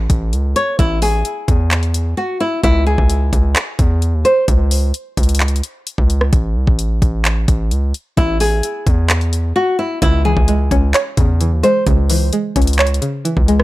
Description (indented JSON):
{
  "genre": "hip hop, trap",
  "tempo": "130 BPM",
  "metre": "4/4",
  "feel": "half-time",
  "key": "C# harmonic minor",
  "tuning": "A4 = 441 Hz",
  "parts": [
    { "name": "flamenco guitar", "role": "melody", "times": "0.0-4.4, 8.2-11.8 s", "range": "E4 to C#5", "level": "-18 LUFS", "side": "equal", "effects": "analog delay" },
    { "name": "hard-hitting 808-style bass", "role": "bass", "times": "0.0-13.6 s", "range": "A1 to E2", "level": "-16 LUFS", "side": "equal", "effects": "transformer saturation" },
    { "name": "trap drum kit", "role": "drums", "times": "0.1-13.6 s", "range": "handclaps, hi-hat, kick drum, rim click", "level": "-16 LUFS", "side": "equal", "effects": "none" },
    { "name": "string-like resonator pluck", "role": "accompaniment", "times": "10.0-13.6 s", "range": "C#3 to C#5", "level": "-18 LUFS", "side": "equal", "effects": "chorus" }
  ],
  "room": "digital ambience",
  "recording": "dry, gritty hardware recording",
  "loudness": "-13 LUFS",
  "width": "side -18 dB against mid",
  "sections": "0.0-13.6 A section",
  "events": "break 2.2-2.6; drums muted 9.6-10.0",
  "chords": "0.0 A; 2.6 C#5; 6.3 A5; 10.0 C#m"
}